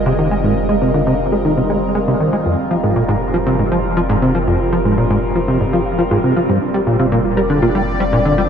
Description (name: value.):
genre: ambient, sequencer-driven space music.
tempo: 119 BPM.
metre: 4/4.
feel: straight.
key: unclear.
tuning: A4 = 441 Hz.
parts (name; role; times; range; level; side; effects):
phased analog pad; sustained chords; 0.0-8.5 s; G3 to Eb5; -19 LUFS; equal; phaser, chorus.
warm sub bass; bass; 0.0-8.5 s; F1; -25 LUFS; equal; none.
warbly dusty pluck; arpeggios; 0.1-8.5 s; D4 to F5; -26 LUFS; left 1 dB; none.
plucky analog bass; riff; 0.1-8.4 s; F2 to Ab3; -15 LUFS; equal; lush chorus, analog delay.
room: wet cathedral reverb, RT60 5.3 s.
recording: in a vast, echoing space.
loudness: -13 LUFS.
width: side -7 dB against mid.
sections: 0.0-8.5 A section.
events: none.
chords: 0.0 Ab6/F; 2.5 Fm7; 6.5 Gm7/F.